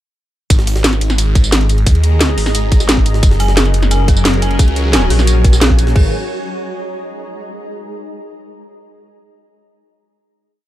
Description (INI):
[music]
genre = dark technical drum and bass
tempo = 176 BPM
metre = 4/4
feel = straight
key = unclear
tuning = A4 = 440 Hz
[part]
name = phased detuned saw bass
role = bass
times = 0.5-6.1 s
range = F#1 to D#2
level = -14 LUFS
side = equal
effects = phaser, tube saturation
[part]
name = drum and bass drum kit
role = drums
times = 0.5-6.0 s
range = crash cymbal, kick drum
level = -11 LUFS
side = equal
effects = none
[part]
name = drum and bass drum kit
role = drums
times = 0.5-5.9 s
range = hi-hat, snare drum, tambourine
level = -16 LUFS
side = equal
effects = none
[part]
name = jungle sampler-style drum kit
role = drums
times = 0.5-6.0 s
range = hi-hat, ride cymbal, snare drum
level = -25 LUFS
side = right 1 dB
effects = high-pass filter on cymbals, high-pass filter on snare, high-pass filter on hats
[part]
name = granular cloud pad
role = texture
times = 1.3-7.3 s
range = F#4 to A#5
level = -24 LUFS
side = right 1 dB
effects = built-in reverb, sidechain pumping
[part]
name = sweeping resonant pad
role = sustained chords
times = 3.2-6.1 s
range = F#3 to B4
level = -23 LUFS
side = left 2 dB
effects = chorus, sidechain pumping
[part]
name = dark detuned synth bell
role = arpeggios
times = 3.4-6.1 s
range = G#4 to G#5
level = -24 LUFS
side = right 2 dB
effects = chorus, sidechain pumping, ping-pong delay
[sound]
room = little or no reverb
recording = none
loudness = -10 LUFS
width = side -14 dB against mid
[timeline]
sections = 0.5-6.0 drop; 6.0-7.3 final chord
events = drop 0.5-6.0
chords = 0.5 G#5; 3.2 F#; 6.0 G#m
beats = | 0.50 0.84 1.18 1.52 | 1.86 2.21 2.55 2.89 | 3.23 3.57 3.91 4.25 | 4.59 4.93 5.27 5.62 | 5.96 6.30 6.64 6.98